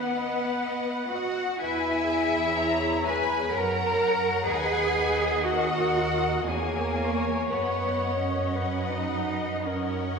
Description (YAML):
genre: classical, slow romantic movement for string orchestra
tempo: 53-64 BPM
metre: 3/4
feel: rubato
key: B major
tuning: A4 = 440 Hz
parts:
  - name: muted studio violin section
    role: melody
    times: 0.0-10.2 s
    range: F#5 to A#5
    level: -32 LUFS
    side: left 5 dB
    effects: none
  - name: muted studio violin section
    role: second line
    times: 0.0-10.2 s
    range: A#4 to B5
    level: -32 LUFS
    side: left 5 dB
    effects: none
  - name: muted studio viola section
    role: accompaniment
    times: 0.0-10.2 s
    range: G#4 to F#5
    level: -31 LUFS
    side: left 2 dB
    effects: none
  - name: muted studio cello section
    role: bass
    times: 0.0-10.2 s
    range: A#3 to B4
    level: -28 LUFS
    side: right 2 dB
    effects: none
  - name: muted symphonic double bass section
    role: bass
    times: 1.6-10.2 s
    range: D#2 to F#2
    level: -33 LUFS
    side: right 3 dB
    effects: none
room: wet concert hall reverb, RT60 1.9 s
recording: minimal, uncompressed stereo recording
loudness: -24 LUFS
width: side -5 dB against mid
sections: 0.0-10.2 A section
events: none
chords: 0.0 B; 1.6 C#m7/E; 3.5 F#; 4.5 B/D#; 6.5 C#m/E; 7.5 B/F#; 9.6 F#6